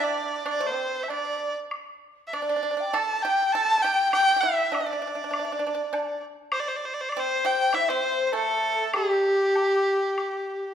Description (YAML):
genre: chinese traditional, Chinese chamber ensemble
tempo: 99 BPM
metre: 4/4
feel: rubato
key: G zhi mode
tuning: A4 = 440 Hz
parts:
  - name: clear erhu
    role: melody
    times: 0.0-10.7 s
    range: G4 to A5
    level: -25 LUFS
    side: equal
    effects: none
  - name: mellow xiao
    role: second line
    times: 0.0-10.7 s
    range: G4 to A5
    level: -28 LUFS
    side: left 1 dB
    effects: none
  - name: pipa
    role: second line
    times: 0.0-10.7 s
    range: G3 to A4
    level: -31 LUFS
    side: right 6 dB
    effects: none
  - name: woodblock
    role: percussion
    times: 0.5-10.3 s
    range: none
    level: -35 LUFS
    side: left 1 dB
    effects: none
room: wet recital hall reverb, RT60 1.6 s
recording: minimal, uncompressed stereo recording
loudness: -22 LUFS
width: side -9 dB against mid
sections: 0.0-10.7 A section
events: none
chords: none